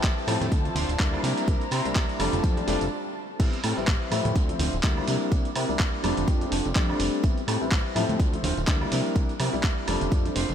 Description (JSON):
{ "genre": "filtered disco house", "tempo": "125 BPM", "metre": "4/4", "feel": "swing 56% on 16ths", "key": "A minor", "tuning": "A4 = 440 Hz", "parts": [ { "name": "warm concert grand piano", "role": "accompaniment", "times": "0.0-10.4 s", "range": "F3 to B4", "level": "-29 LUFS", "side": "left 2 dB", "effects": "phaser, vintage 12-bit sampler grit, sidechain pumping, low-pass filter" }, { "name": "dark studio violin section", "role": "sustained chords", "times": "0.0-2.9 s", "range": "E4 to Bb5", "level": "-35 LUFS", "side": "equal", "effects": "sidechain pumping, low-pass filter" }, { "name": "electric guitar at the edge of break-up", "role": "riff", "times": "0.0-10.5 s", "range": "C4 to D5", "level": "-33 LUFS", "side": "right 1 dB", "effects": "vintage 12-bit sampler grit, sidechain pumping, low-pass filter" }, { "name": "fat analog bass", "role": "bass", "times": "0.0-10.5 s", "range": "D1 to C3", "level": "-30 LUFS", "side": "equal", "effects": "sidechain pumping, low-pass filter" }, { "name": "dusty soul sampler-style drum kit", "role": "drums", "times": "0.0-10.5 s", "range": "crash cymbal, handclaps, hi-hat, tambourine, woodblock", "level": "-31 LUFS", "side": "right 1 dB", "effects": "sidechain pumping on hats, sidechain pumping on perc, sidechain pumping on cymbals" }, { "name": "electronic kick drum", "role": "drums", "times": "0.0-10.2 s", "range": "none", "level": "-24 LUFS", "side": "equal", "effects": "none" }, { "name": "tambourine and congas", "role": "percussion", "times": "0.0-10.5 s", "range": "none", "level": "-38 LUFS", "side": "right 2 dB", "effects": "none" } ], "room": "light reverb, digital ambience", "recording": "none", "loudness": "-23 LUFS", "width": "side -9 dB against mid", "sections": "0.0-3.4 A section; 3.4-10.5 A section", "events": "stop 2.9-3.4; filter sweep 3.4-10.5", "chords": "0.0 Am7; 0.5 Dm7; 1.2 C7; 2.2 F6; 3.4 Am7; 4.4 Dm7; 5.1 C7; 6.0 F6; 7.2 Am7; 8.2 Dm7; 8.9 C7; 9.9 F6", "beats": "0.04 0.52 1.00 | 1.48 1.96 2.44 2.92 | 3.40 3.88 4.36 4.84 | 5.32 5.80 6.28 6.76 | 7.24 7.72 8.20 8.68 | 9.16 9.64 10.12" }